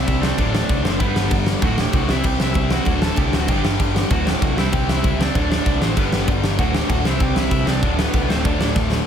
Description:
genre	punk rock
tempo	193 BPM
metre	4/4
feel	straight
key	D mixolydian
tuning	A4 = 439 Hz
part	high-gain lead guitar	melody	0.0-8.7 s	B3 to A5	-27 LUFS	equal	distortion
part	overdriven electric guitar	riff	0.0-9.1 s	D2 to C4	-26 LUFS	right 12 dB	none
part	overdriven electric guitar	riff	0.0-9.1 s	D2 to C4	-29 LUFS	left 1 dB	none
part	tight distorted guitar	riff	0.0-9.1 s	D2 to C4	-26 LUFS	left 13 dB	distortion
part	overdriven picked electric bass	bass	0.0-9.0 s	D1 to C#2	-23 LUFS	equal	none
part	big rock drum kit	drums	0.1-9.0 s	crash cymbal, kick drum, snare drum	-20 LUFS	equal	none
room	little or no reverb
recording	none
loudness	-16 LUFS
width	side -8 dB against mid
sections	0.0-9.1 A section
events	drum fill 8.8-9.1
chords	0.4 D; 1.0 G; 1.6 D; 2.1 C; 2.9 D; 3.5 G5; 4.1 D; 4.6 C; 5.3 D5; 6.0 G; 6.6 D; 7.1 C; 7.8 D5

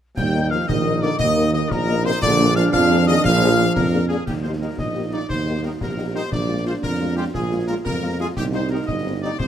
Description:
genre	military-style march for wind band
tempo	117 BPM (dotted quarters)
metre	6/8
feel	straight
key	Eb major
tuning	A4 = 438 Hz
part	bright trumpet section	melody	0.2-9.5 s	G4 to G5	-26 LUFS	left 1 dB	none
part	dark euphonium	second line	0.2-9.5 s	Bb2 to G4	-25 LUFS	right 4 dB	none
part	mellow wooden piccolo	second line	0.2-4.1 s	Bb5 to G6	-25 LUFS	left 5 dB	none
part	clear trombone section	sustained chords	0.2-9.3 s	G3 to F4	-29 LUFS	right 2 dB	none
part	warm tuba	bass	0.2-9.5 s	G1 to F2	-22 LUFS	right 2 dB	none
part	concert snare drum, clash cymbals and concert bass drum	drums	0.2-9.5 s	none	-29 LUFS	left 2 dB	none
part	mellow French horn section	accompaniment	0.3-9.3 s	G3 to Bb4	-28 LUFS	left 5 dB	none
room	light reverb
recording	faint mains hum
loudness	-18 LUFS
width	side -10 dB against mid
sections	0.2-4.3 A section; 4.3-9.5 B section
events	none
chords	0.2 Eb; 2.2 Bb7; 4.3 Eb; 6.3 Bb7; 8.4 Cm

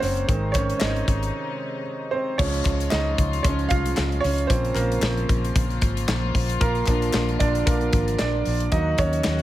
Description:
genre	piano-driven pop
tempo	114 BPM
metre	4/4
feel	swing 56% on 16ths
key	Db major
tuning	A4 = 443 Hz
part	clear grand piano	accompaniment	0.0-9.4 s	Eb3 to F5	-25 LUFS	right 3 dB	none
part	warm studio string section	sustained chords	0.0-9.4 s	C3 to Gb4	-32 LUFS	left 4 dB	none
part	vintage muted fingered electric bass	bass	0.0-9.4 s	Gb1 to Eb2	-25 LUFS	equal	none
part	modern studio drum kit	drums	0.0-9.4 s	crash cymbal, handclaps, hi-hat, kick drum, snare drum	-25 LUFS	left 1 dB	none
part	group handclap	percussion	0.5-9.4 s	none	-36 LUFS	left 7 dB	none
room	studio reverb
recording	none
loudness	-20 LUFS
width	side -14 dB against mid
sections	0.0-2.4 A section; 2.4-9.4 B section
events	grand piano solo 0.0-2.4, 2.4-9.4; break 1.3-2.4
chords	0.3 Ab; 2.4 Db; 4.5 Bbm; 6.6 Bb; 8.7 Ebm

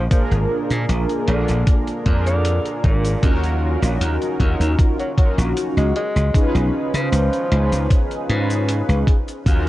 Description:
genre	vaporwave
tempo	77 BPM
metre	4/4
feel	straight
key	Eb minor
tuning	A4 = 441 Hz
part	mellow tenor saxophone	melody	0.0-8.0 s	Bb2 to Ab3	-27 LUFS	equal	tape echo
part	slap bass	bass	0.0-9.7 s	Ab1 to Db3	-19 LUFS	equal	none
part	mellow synth brass	accompaniment	0.1-9.7 s	Bb3 to Cb5	-23 LUFS	equal	lush chorus, tape echo
part	electronic hi-hat and cabasa	drums	0.1-9.6 s	none	-34 LUFS	left 1 dB	overdrive, vintage 12-bit sampler grit
part	electronic kick drum	drums	0.1-9.6 s	none	-16 LUFS	equal	overdrive, vintage 12-bit sampler grit
room	light reverb, digital ambience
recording	cassette tape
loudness	-16 LUFS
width	side -16 dB against mid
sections	0.0-9.7 A section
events	none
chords	0.0 Bb7; 3.2 Ebm7; 6.0 Db7; 9.1 Ebm7

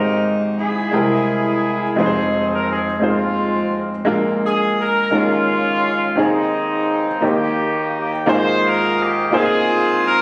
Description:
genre	gospel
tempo	57 BPM (dotted quarters)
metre	6/8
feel	straight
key	Ab major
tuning	A4 = 441 Hz
part	warm horn section	melody	0.0-10.2 s	Ab3 to C5	-21 LUFS	equal	none
part	clear upright piano	accompaniment	0.0-10.2 s	F1 to G5	-21 LUFS	equal	none
room	moderate echo chamber reverb, RT60 1.8 s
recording	recorded on a phone in the room, studio reverb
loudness	-18 LUFS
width	mono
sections	0.0-8.3 A section; 8.3-10.2 B section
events	none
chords	0.0 Abmaj7; 0.9 C7b13; 2.0 Fm7; 4.1 Bb7; 5.1 Eb9sus4; 6.2 Ab/Eb; 7.2 Eb; 8.3 Ab69

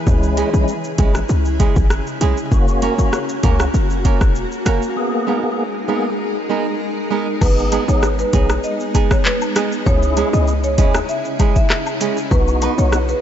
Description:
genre	dancehall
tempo	98 BPM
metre	4/4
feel	straight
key	G# minor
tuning	A4 = 437 Hz
part	granular cloud pad	sustained chords	0.0-13.2 s	C#3 to A#4	-24 LUFS	left 2 dB	built-in reverb, sidechain pumping
part	tonewheel organ	accompaniment	0.1-13.0 s	G#3 to G#4	-24 LUFS	left 1 dB	chorus vibrato, fast rotary speaker
part	short 808-style bass	bass	0.1-13.1 s	E1 to D#2	-18 LUFS	equal	none
part	afro-pop drum kit	drums	0.1-13.2 s	crash cymbal, handclaps, hi-hat, kick drum, rim click, shaker	-18 LUFS	equal	overdrive
part	flamenco guitar	arpeggios	0.4-12.8 s	G#3 to B4	-23 LUFS	right 6 dB	ping-pong delay
part	marimba with medium mallets	melody	7.4-13.2 s	B4 to E5	-23 LUFS	right 1 dB	ping-pong delay
part	woodblock and cabasa	percussion	7.4-12.8 s	none	-33 LUFS	left 8 dB	none
room	light reverb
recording	nothing above 7.7 kHz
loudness	-15 LUFS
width	side -10 dB against mid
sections	0.0-7.4 A section; 7.4-13.2 B section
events	break 5.0-7.4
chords	0.1 C#m; 2.5 F#; 5.0 G#madd9; 9.9 C#m; 12.3 B

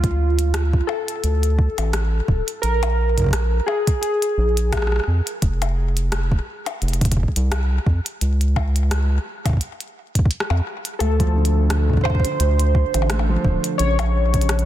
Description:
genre	IDM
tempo	86 BPM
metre	4/4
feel	swing 56% on 16ths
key	unclear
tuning	A4 = 440 Hz
part	warbly lo-fi synth keys	melody	0.0-5.0, 11.0-14.7 s	F4 to Db5	-24 LUFS	right 1 dB	chorus, tape echo
part	round analog bass	bass	0.0-14.7 s	D1 to F2	-19 LUFS	equal	none
part	electronic kick drum	drums	0.0-14.5 s	none	-19 LUFS	equal	overdrive
part	glitchy drum kit	drums	0.0-14.7 s	hi-hat, percussion blips, rim click	-28 LUFS	left 2 dB	overdrive, ping-pong delay
part	felt-muted upright piano	arpeggios	11.0-14.7 s	Db3 to A3	-27 LUFS	equal	tape echo
room	light reverb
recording	dense, heavily limited modern master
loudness	-18 LUFS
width	side -12 dB against mid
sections	0.0-14.7 A section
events	none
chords	0.0 Dm; 2.6 Bb5; 5.4 F5; 8.2 N.C.; 11.0 Dm7; 13.8 Bbm

